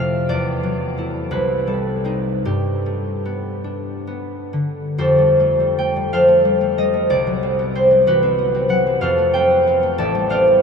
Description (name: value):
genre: classical, solo harp piece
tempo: 41-64 BPM (dotted quarters)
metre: 6/8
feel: rubato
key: unclear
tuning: A4 = 440 Hz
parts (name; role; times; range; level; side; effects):
- concert harp; solo; 0.0-10.6 s; A1 to A5; -16 LUFS; equal; none
room: wet huge ambient reverb, RT60 8.9 s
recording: in a vast, echoing space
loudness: -15 LUFS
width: side -6 dB against mid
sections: 0.0-5.0 A section; 5.0-10.6 B section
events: none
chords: 0.3 E9sus4; 1.3 Cm6; 2.4 Gadd9; 5.0 Fadd9; 7.1 Cmaj7#11; 9.0 Fadd9; 10.0 Am11